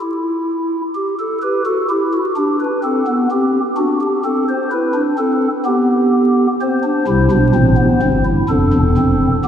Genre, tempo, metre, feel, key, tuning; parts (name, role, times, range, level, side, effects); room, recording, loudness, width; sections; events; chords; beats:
classical, baroque-style 4-part fugue for pipe organ; 64 BPM; 3/4; straight; A4 = 441 Hz
pipe organ, stopped flute; solo; 0.0-9.5 s; E1 to C5; -13 LUFS; equal
wet cathedral reverb, RT60 4.4 s; heard from further back in the room, vinyl crackle; -13 LUFS; side -9 dB against mid
0.0-9.5 A section
0.0 N.C.; 0.9 G; 2.8 Am7; 3.8 D7(no3); 5.7 G/B; 6.6 C; 8.5 Dm7
0.00 | 0.94 1.88 2.83 | 3.77 4.72 5.67 | 6.61 7.55 8.50 | 9.45